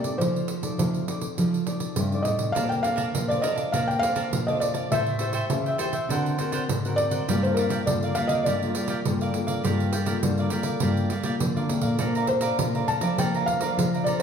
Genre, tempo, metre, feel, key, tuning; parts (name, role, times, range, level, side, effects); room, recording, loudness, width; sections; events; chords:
samba and choro; 102 BPM; 4/4; straight; G minor; A4 = 440 Hz
felt-muted upright piano; melody; 0.0-14.2 s; Bb4 to A5; -27 LUFS; left 1 dB
nylon-string guitar; accompaniment; 0.0-14.2 s; C3 to D5; -30 LUFS; left 2 dB
nylon-string guitar; bass; 0.0-14.2 s; G2 to F3; -28 LUFS; equal
pandeiro; percussion; 0.0-14.2 s; -30 LUFS; right 3 dB
cavaquinho; accompaniment; 2.5-14.2 s; D4 to Bb5; -31 LUFS; right 3 dB
wet large studio reverb, RT60 1.2 s; band playing live in one room; -22 LUFS; side -7 dB against mid
0.0-12.0 A section; 12.0-14.2 B section
0.2 F13; 2.6 Bbmaj9; 4.9 Am7; 6.1 Daug7; 7.3 Gm9; 12.0 Bbmaj9